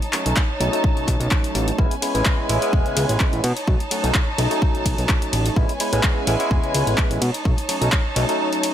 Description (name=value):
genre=filtered disco house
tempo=127 BPM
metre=4/4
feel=swing 54% on 16ths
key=unclear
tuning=A4 = 440 Hz
part: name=warm studio violin section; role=sustained chords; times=0.0-8.7 s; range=C#4 to A5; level=-27 LUFS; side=equal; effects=vintage 12-bit sampler grit, sidechain pumping
part: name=punchy analog drum machine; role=drums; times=0.0-8.7 s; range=handclaps, hi-hat, ride cymbal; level=-25 LUFS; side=left 1 dB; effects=overdrive, sidechain pumping on hats, sidechain pumping on cymbals
part: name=barky tine electric piano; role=accompaniment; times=0.1-8.7 s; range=F#3 to F#4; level=-25 LUFS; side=equal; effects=overdrive, phaser, vintage 12-bit sampler grit, sidechain pumping
part: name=fat analog bass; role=bass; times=0.3-8.2 s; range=E1 to B2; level=-22 LUFS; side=equal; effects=sidechain pumping
part: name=electronic kick drum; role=drums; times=0.4-8.0 s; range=none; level=-20 LUFS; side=equal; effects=none
room=light reverb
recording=none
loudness=-18 LUFS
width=side -10 dB against mid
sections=0.0-8.7 A section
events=none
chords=0.0 B9; 1.8 Amaj9; 3.4 B9; 5.6 Amaj9; 7.2 B9